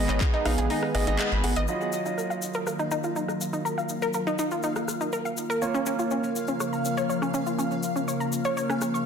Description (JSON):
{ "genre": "progressive house", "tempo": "122 BPM", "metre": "4/4", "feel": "straight", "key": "Eb minor", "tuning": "A4 = 438 Hz", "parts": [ { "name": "lush unison pad", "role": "sustained chords", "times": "0.0-9.1 s", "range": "Db3 to Cb5", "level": "-30 LUFS", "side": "left 2 dB", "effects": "chorus, sidechain pumping" }, { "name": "clear concert grand piano", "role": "stabs", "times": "0.0-9.1 s", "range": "Gb3 to Gb5", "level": "-32 LUFS", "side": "right 4 dB", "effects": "sidechain pumping, low-pass filter, digital delay" }, { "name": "round analog bass", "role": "bass", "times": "0.0-1.7 s", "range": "Ab1 to Bb1", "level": "-27 LUFS", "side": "left 1 dB", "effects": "sidechain pumping" }, { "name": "analog pluck", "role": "arpeggios", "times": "0.1-9.0 s", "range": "Db4 to Db6", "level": "-29 LUFS", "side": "equal", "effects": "chorus, sidechain pumping, digital delay" }, { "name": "house drum kit", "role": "drums", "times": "0.1-8.9 s", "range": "crash cymbal, handclaps, hi-hat, rim click", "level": "-34 LUFS", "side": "equal", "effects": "low-pass filter on hats, low-pass filter on snare, low-pass filter on cymbals" }, { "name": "tube shaker", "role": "percussion", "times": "1.7-9.0 s", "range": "none", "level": "-38 LUFS", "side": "left 5 dB", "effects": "none" }, { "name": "backwards swelling texture", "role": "texture", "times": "2.8-9.1 s", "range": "F5", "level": "-37 LUFS", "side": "right 1 dB", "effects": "built-in reverb, sidechain pumping" } ], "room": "moderate digital room reverb, RT60 1.3 s", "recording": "dense, heavily limited modern master", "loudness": "-24 LUFS", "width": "side -6 dB against mid", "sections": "0.0-1.7 A section; 1.7-9.1 B section", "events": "band accent 1.2", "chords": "0.0 Abm; 1.7 Ebmadd9; 5.6 Bbm" }